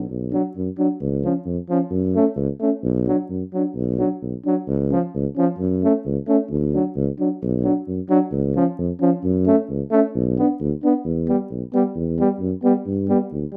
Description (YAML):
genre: balkan folk, Balkan brass band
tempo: 132 BPM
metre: 2/4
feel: swing 56% on 16ths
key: unclear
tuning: A4 = 440 Hz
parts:
  - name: dark tuba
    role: bass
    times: 0.0-13.4 s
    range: B1 to G2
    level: -24 LUFS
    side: equal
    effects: none
  - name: dark euphonium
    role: accompaniment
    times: 0.3-13.2 s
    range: B3 to D4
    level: -23 LUFS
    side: equal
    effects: none
  - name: warm trombone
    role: accompaniment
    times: 0.3-13.6 s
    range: E#3 to B3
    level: -24 LUFS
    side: equal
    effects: none
room: wet studio reverb, RT60 0.6 s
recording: rough home demo mix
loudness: -21 LUFS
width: mono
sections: 0.0-11.1 A section; 11.1-13.6 B section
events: none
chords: 0.1 Bm; 1.0 C#; 1.9 F#m; 2.8 Bm; 4.7 C#; 5.6 F#m; 6.5 D; 7.4 Bm; 8.3 C#; 9.2 F#m; 10.2 Bm; 11.1 Em; 12.9 G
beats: | 0.10 0.56 | 1.01 1.47 | 1.93 2.39 | 2.85 3.31 | 3.76 4.22 | 4.68 5.14 | 5.59 6.05 | 6.51 6.96 | 7.42 7.88 | 8.33 8.79 | 9.24 9.70 | 10.15 10.60 | 11.06 11.51 | 11.97 12.42 | 12.87 13.33